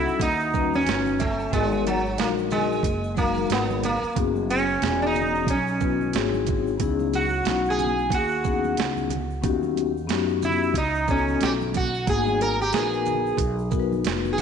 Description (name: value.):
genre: hip hop, jazz-hop.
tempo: 91 BPM.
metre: 4/4.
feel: swing 59% on 16ths.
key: unclear.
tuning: A4 = 437 Hz.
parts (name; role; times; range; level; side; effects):
sitar; melody; 0.0-14.4 s; F#3 to A#4; -25 LUFS; right 3 dB; none.
vibraphone with soft mallets; accompaniment; 0.0-14.4 s; F#3 to B4; -26 LUFS; left 10 dB; none.
upright bass; bass; 0.0-14.4 s; E1 to F#2; -30 LUFS; equal; none.
tube shaker and congas; percussion; 0.1-14.4 s; none; -37 LUFS; right 12 dB; none.
boom bap sampler-style drum kit; drums; 0.2-14.4 s; hi-hat, kick drum, shaker, snare drum; -28 LUFS; right 5 dB; none.
room: moderate echo chamber reverb, RT60 1.6 s, small room reverb.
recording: 1960s-style stereo with parts hard left and right, nothing above 10.9 kHz.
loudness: -21 LUFS.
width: side -7 dB against mid.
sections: 0.0-14.4 A section.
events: sitar solo 0.0-14.4.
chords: 0.0 D#7alt; 1.5 G#m9; 4.2 F#9sus4; 6.1 G#7b13; 6.8 C#m7; 9.4 D#7alt; 12.1 G#m9.